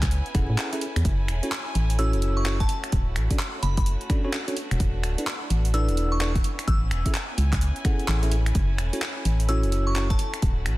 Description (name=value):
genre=UK garage, two-step garage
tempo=128 BPM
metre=4/4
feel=swing 63% on 16ths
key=F# minor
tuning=A4 = 439 Hz
part: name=warm chamber violin section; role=sustained chords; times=0.0-10.8 s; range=A3 to G#5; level=-37 LUFS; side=equal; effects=sidechain pumping
part: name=organ-like FM bass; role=bass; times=0.0-10.8 s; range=D1 to A2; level=-23 LUFS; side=equal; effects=none
part: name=electronic kick drum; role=drums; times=0.0-10.5 s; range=none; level=-24 LUFS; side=equal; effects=none
part: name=house drum kit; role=drums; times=0.0-10.8 s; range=finger snaps, handclaps, hi-hat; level=-32 LUFS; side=equal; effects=soft clipping on snare
part: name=bell-like tine electric piano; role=stabs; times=0.3-10.1 s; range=C#4 to F#5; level=-32 LUFS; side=equal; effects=digital delay
part: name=glassy synth bell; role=melody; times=2.0-10.2 s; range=A5 to E6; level=-33 LUFS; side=equal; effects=chorus, tremolo, digital delay
room=little or no reverb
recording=dense, heavily limited modern master, vinyl crackle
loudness=-22 LUFS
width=side -18 dB against mid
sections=0.0-10.8 A section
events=none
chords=0.0 Amaj7; 1.1 F#m7; 2.7 Dmaj7; 4.6 E7sus4; 6.4 Amaj7; 8.6 F#m7; 10.2 Dmaj7